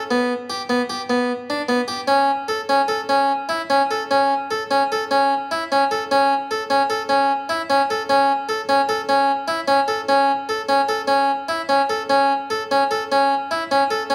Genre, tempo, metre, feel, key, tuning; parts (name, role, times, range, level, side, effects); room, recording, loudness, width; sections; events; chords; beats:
contemporary instrumental, contemporary; 150 BPM; 5/4; straight; A mixolydian; A4 = 440 Hz
harpsichord; solo; 0.1-14.1 s; B3 to A4; -20 LUFS; equal
wet recital hall reverb, RT60 1.6 s; -20 LUFS; mono
0.0-4.1 A section; 4.1-14.1 B section
| 0.11 0.50 0.90 1.29 1.69 | 2.09 2.49 2.89 3.29 3.70 | 4.10 4.51 4.91 5.31 5.71 | 6.11 6.51 6.90 7.30 7.70 | 8.10 8.49 8.89 9.29 9.68 | 10.09 10.49 10.89 11.29 11.70 | 12.10 12.51 12.91 13.31 13.71 | 14.11